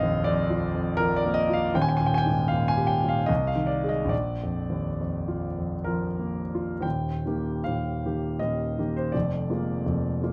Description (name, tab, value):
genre	classical, romantic nocturne for solo piano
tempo	56-84 BPM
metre	3/4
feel	rubato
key	Eb major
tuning	A4 = 440 Hz
part	warm grand piano	solo	0.0-10.3 s	Eb1 to Ab5	-26 LUFS	equal	none
room	light reverb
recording	close, detailed microphones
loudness	-27 LUFS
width	mono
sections	0.0-6.8 A section; 6.8-10.3 B section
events	none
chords	0.0 Bb; 1.7 Eb; 3.3 Ab/C; 4.1 Bb; 6.8 Eb; 9.1 Bb7/F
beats	0.28 1.00 | 1.74 2.50 3.29 | 4.12 5.00 5.86 | 6.84 7.64 8.41 | 9.14 9.86